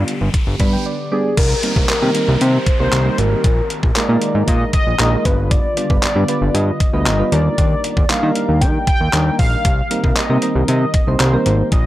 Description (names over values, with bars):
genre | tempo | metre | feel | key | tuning
dance-pop | 116 BPM | 4/4 | straight | C minor | A4 = 440 Hz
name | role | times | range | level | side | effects
soft electric-piano-like synth keys | accompaniment | 0.0-11.7 s | G3 to B5 | -21 LUFS | right 1 dB | chorus, sidechain pumping
glassy FM pad | sustained chords | 0.1-11.9 s | D3 to D5 | -28 LUFS | left 1 dB | none
fat analog bass | bass | 0.0-11.9 s | G1 to Eb3 | -17 LUFS | equal | sidechain pumping
riser and downlifter | sound effects | 0.0-5.5 s | none | -29 LUFS | equal | none
detuned 8-bit digital drum machine | drums | 0.1-11.8 s | crash cymbal, handclaps, hi-hat, kick drum | -17 LUFS | equal | none
warm velvety synth lead | melody | 1.1-11.9 s | Ab4 to G5 | -22 LUFS | equal | chorus, tape echo
room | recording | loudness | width
digital ambience | dry, gritty hardware recording, transformer saturation | -14 LUFS | side -15 dB against mid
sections
0.0-1.4 A section; 1.4-11.9 B section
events
riser 0.0-1.4; synth keys fill 0.3-1.4; break 0.9-1.4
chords
0.0 G; 1.4 Cm7; 3.4 Bb7sus4; 5.3 G7; 7.3 Ebmaj7; 9.7 Cm7